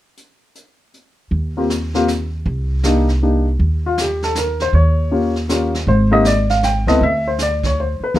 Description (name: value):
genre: jazz piano trio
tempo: 158 BPM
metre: 3/4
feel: swing 65% on 8ths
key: Eb major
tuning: A4 = 444 Hz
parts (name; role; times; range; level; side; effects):
- jazz brush drum kit; drums; 0.2-8.2 s; brushed snare drum, hi-hat, kick drum, snare drum; -25 LUFS; right 2 dB; none
- upright bass; bass; 1.3-8.2 s; Ab1 to Eb2; -18 LUFS; right 1 dB; none
- warm baby grand piano; melody; 1.6-8.2 s; Ab3 to G5; -17 LUFS; left 1 dB; none
room: little or no reverb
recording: close, detailed microphones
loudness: -15 LUFS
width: side -14 dB against mid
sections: 0.2-1.3 A section; 1.3-3.6 B section; 3.6-8.2 C section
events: none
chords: 0.2 N.C.; 1.3 Ebsus2; 2.5 Cm7; 3.6 Eb5; 5.9 Abmaj7; 7.0 Cadd9/D